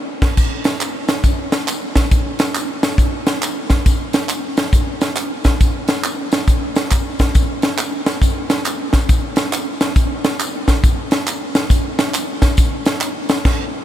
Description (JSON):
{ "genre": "gospel", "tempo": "138 BPM", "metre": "4/4", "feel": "swing 64% on 8ths", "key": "none", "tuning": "none", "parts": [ { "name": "crisp fusion drum kit", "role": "drums", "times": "0.2-13.6 s", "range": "crash cymbal, hi-hat, kick drum, snare drum", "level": "-15 LUFS", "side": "equal", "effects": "none" }, { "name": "tambourine and handclaps", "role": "percussion", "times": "0.4-13.4 s", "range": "none", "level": "-26 LUFS", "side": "right 2 dB", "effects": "none" } ], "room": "moderate huge ambient reverb, RT60 6.6 s", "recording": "dreamy mix soaked in reverb", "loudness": "-15 LUFS", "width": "side -12 dB against mid", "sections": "0.4-13.8 A section", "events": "band accent 0.0-0.4, 13.5-13.8", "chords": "none", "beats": "| 0.38 0.81 1.25 1.68 | 2.12 2.55 2.99 3.42 | 3.86 4.29 4.73 5.17 | 5.60 6.04 6.47 6.91 | 7.35 7.78 8.22 8.65 | 9.09 9.53 9.96 10.40 | 10.83 11.27 11.71 12.14 | 12.58 13.02 13.45" }